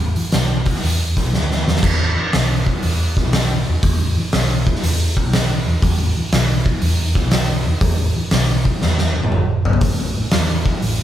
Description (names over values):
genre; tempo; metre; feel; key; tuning
blues rock power trio and southern rock; 120 BPM; 4/4; swing 68% on 8ths; E minor; A4 = 440 Hz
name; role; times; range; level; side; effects
vintage muted fingered electric bass; bass; 0.0-11.0 s; F#1 to E3; -19 LUFS; equal; none
oversized low-tuned drum kit; drums; 0.2-11.0 s; crash cymbal, hi-hat, kick drum, snare drum, toms; -17 LUFS; equal; none
room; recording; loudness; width
moderate large studio reverb, RT60 1.1 s; band playing live in one room; -15 LUFS; side -11 dB against mid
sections
0.0-1.8 A section; 1.8-11.0 B section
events
drum fill 1.3-1.8, 8.8-9.8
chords
none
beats
0.33 0.83 1.33 | 1.83 2.33 2.83 3.33 | 3.83 4.33 4.83 5.33 | 5.83 6.33 6.83 7.33 | 7.83 8.33 8.83 9.32 | 9.82 10.32 10.82